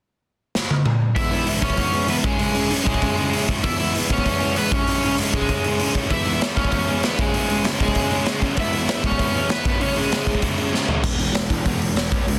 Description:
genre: punk rock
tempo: 194 BPM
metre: 4/4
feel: straight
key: E major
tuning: A4 = 440 Hz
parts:
  - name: raw garage drum kit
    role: drums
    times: 0.6-12.3 s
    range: crash cymbal, hi-hat, kick drum, snare drum, toms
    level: -24 LUFS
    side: equal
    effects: none
  - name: crunchy overdriven guitar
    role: riff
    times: 1.1-11.0 s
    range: C#3 to E4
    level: -28 LUFS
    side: equal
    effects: none
  - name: crunchy overdriven guitar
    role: melody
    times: 1.2-10.4 s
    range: G#3 to E5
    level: -26 LUFS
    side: equal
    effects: digital delay
  - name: crunchy overdriven guitar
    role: riff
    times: 1.2-12.4 s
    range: C#3 to E4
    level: -30 LUFS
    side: equal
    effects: none
  - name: fuzz picked electric bass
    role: bass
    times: 11.0-12.4 s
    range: E1 to C#2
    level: -28 LUFS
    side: equal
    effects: overdrive
room: little or no reverb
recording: dense, heavily limited modern master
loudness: -21 LUFS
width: mono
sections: 0.0-1.2 A section; 1.2-11.0 B section; 11.0-12.4 C section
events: drum fill 0.6-1.2, 10.7-11.0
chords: 0.0 N.C.; 1.2 E; 2.2 C#m; 3.6 E; 4.7 C#m; 6.1 E; 7.2 C#m; 8.6 E; 9.7 C#m; 11.0 E

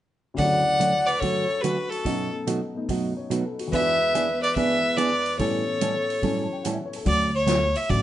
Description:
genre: country, western swing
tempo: 144 BPM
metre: 4/4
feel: swing 68% on 8ths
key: D major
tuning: A4 = 440 Hz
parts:
  - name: dark upright piano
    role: accompaniment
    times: 0.3-7.1 s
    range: D2 to A5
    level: -32 LUFS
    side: left 3 dB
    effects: none
  - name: clear fiddle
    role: melody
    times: 0.4-8.0 s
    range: A4 to F#5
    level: -24 LUFS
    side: left 1 dB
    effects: none
  - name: mellow clarinet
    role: second line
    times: 0.4-6.6 s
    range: F#4 to D5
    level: -29 LUFS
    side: right 1 dB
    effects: none
  - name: hollow-body jazz guitar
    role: accompaniment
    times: 0.4-8.0 s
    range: A2 to A4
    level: -27 LUFS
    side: right 4 dB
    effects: none
  - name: swinging big-band drum kit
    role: drums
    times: 0.4-8.0 s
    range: hi-hat, kick drum, snare drum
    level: -34 LUFS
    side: left 1 dB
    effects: none
  - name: upright bass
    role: bass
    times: 7.1-8.0 s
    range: A1 to D2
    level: -25 LUFS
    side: left 1 dB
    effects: none
room: wet studio reverb, RT60 0.8 s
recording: nothing above 10.4 kHz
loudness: -21 LUFS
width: side -12 dB against mid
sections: 0.4-7.1 A section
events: break 6.2-7.1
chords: 0.4 Dmaj7; 2.1 B7; 3.7 E7; 5.4 A7; 7.1 Dmaj7

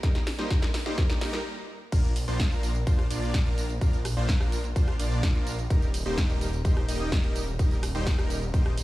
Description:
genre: EDM, festival progressive house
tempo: 127 BPM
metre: 4/4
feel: straight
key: Bb major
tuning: A4 = 440 Hz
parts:
  - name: supersaw chords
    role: riff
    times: 0.0-8.7 s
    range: F3 to Eb5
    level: -33 LUFS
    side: equal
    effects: sidechain pumping, dub echo
  - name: big-room dance drum kit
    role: drums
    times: 0.0-8.8 s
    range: crash cymbal, hi-hat, rim click, snare drum, tambourine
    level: -35 LUFS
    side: equal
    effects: none
  - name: electronic kick drum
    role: drums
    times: 0.0-8.6 s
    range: none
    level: -25 LUFS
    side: equal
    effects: none
  - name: wide detuned saw bass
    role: bass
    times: 1.9-8.8 s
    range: Eb1 to Bb1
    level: -31 LUFS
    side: equal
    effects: chorus, sidechain pumping
room: little or no reverb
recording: small room ambience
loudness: -24 LUFS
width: side -17 dB against mid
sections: 0.0-1.9 A section; 1.9-8.8 B section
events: build-up 0.0-1.9; drum fill 0.0-1.5; stop 1.5-1.9; drop 1.9-8.8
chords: 0.0 Eb; 1.9 Bb; 5.7 Eb

